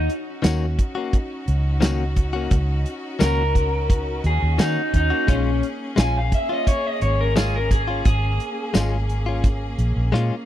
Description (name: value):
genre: straight-eighth soul blues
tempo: 87 BPM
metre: 4/4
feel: straight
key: Bb minor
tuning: A4 = 440 Hz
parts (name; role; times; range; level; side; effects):
- electric guitar at the edge of break-up; melody; 0.0-10.1 s; Db4 to Ab5; -24 LUFS; left 1 dB; spring reverb, slapback echo
- clear studio string section; sustained chords; 0.0-10.5 s; Bb3 to Ab4; -32 LUFS; equal; none
- vintage muted fingered electric bass; bass; 0.0-10.3 s; Ab1 to Eb3; -22 LUFS; equal; none
- warm soul drum kit; drums; 0.1-10.3 s; hi-hat, kick drum, snare drum, tambourine; -20 LUFS; equal; none
- direct-recorded clean electric guitar; stabs; 0.4-10.3 s; Eb3 to Gb4; -27 LUFS; left 6 dB; none
room: small room ambience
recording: dry, close 1970s-style studio recording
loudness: -19 LUFS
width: side -12 dB against mid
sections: 0.0-10.5 A section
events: clean electric guitar solo 0.0-10.5; drum fill 10.1-10.5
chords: 0.0 Ebm7; 5.3 Bbm7